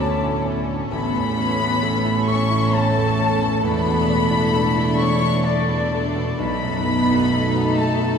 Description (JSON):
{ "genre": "cinematic", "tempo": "66 BPM", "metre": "3/4", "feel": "rubato", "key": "A major", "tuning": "A4 = 440 Hz", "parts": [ { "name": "rich studio violin section", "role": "melody", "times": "0.0-8.2 s", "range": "D5 to C#6", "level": "-27 LUFS", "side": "left 5 dB", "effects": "none" }, { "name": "rich studio violin section", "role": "second line", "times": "0.0-8.2 s", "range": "C#4 to A4", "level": "-29 LUFS", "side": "left 3 dB", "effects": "none" }, { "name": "silver concert flute", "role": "second line", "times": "0.0-8.2 s", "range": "D5 to C#6", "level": "-26 LUFS", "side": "left 3 dB", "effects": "none" }, { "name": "clear concert grand piano", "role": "accompaniment", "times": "0.0-8.2 s", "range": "A1 to A4", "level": "-26 LUFS", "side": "left 1 dB", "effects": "none" }, { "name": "dark studio viola section", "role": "accompaniment", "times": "0.0-8.2 s", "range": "D3 to C#5", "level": "-26 LUFS", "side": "right 1 dB", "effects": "none" }, { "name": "mellow French horn section", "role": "sustained chords", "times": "0.0-8.2 s", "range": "A3 to D#4", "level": "-26 LUFS", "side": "left 1 dB", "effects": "none" }, { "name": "warm studio cello section", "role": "bass", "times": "0.0-8.2 s", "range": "E2 to D3", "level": "-27 LUFS", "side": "right 3 dB", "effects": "none" }, { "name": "warm studio double bass section", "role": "bass", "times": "0.0-8.2 s", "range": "E1 to D2", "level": "-25 LUFS", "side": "right 3 dB", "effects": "none" } ], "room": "wet cathedral reverb, RT60 6.2 s", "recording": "recorded in a church or concert hall", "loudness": "-17 LUFS", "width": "side -6 dB against mid", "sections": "0.0-8.2 A section", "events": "none", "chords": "0.0 Dmaj7; 0.9 Aadd9; 3.6 E7sus4; 6.4 B7" }